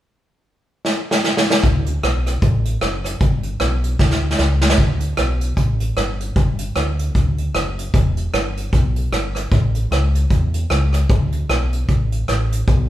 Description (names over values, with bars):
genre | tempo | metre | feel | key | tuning
ska | 152 BPM | 4/4 | swing 59% on 8ths | D major | A4 = 440 Hz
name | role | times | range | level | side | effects
soft brush drum kit | drums | 0.8-12.8 s | hi-hat, kick drum, rim click, snare drum | -18 LUFS | equal | none
deep dub fingered electric bass | bass | 1.6-12.9 s | E1 to E2 | -20 LUFS | equal | none
room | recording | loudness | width
wet large studio reverb, RT60 1.1 s | band playing live in one room | -16 LUFS | side -13 dB against mid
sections
0.1-1.6 A section; 1.6-4.8 B section; 4.8-12.9 C section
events
drum fill 0.9-1.6, 4.0-4.8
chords
none